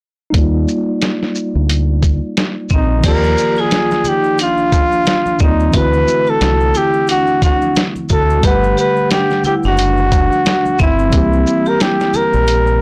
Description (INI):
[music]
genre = hip hop, jazz-hop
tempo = 89 BPM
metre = 4/4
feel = swing 59% on 16ths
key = unclear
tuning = A4 = 440 Hz
[part]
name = mellow tine electric piano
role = accompaniment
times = 0.3-12.8 s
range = D3 to F#5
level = -23 LUFS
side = equal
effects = low-pass filter, plate reverb
[part]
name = deep dub fingered electric bass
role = bass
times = 0.3-12.8 s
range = F#1 to Eb2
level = -18 LUFS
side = equal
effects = tube saturation
[part]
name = lo-fi sampler-style drum kit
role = drums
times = 0.3-12.7 s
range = crash cymbal, hi-hat, kick drum, shaker, snare drum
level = -19 LUFS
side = equal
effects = vintage 12-bit sampler grit
[part]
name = breathy flugelhorn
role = melody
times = 2.7-12.8 s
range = Eb4 to Cb5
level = -17 LUFS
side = equal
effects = slapback echo, plate reverb
[part]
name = vibraphone with hard mallets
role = second line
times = 2.7-12.8 s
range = C4 to G4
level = -24 LUFS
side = equal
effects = plate reverb
[part]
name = maracas and congas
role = percussion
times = 3.0-12.8 s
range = none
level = -34 LUFS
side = equal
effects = none
[sound]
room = moderate small room reverb, RT60 0.5 s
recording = blown-out, overdriven recording, overdrive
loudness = -14 LUFS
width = mono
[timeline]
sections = 0.3-3.0 A section; 3.0-12.8 B section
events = none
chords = 0.3 Ebmaj9; 5.7 Dsus2; 8.4 Gmaj9; 11.1 C7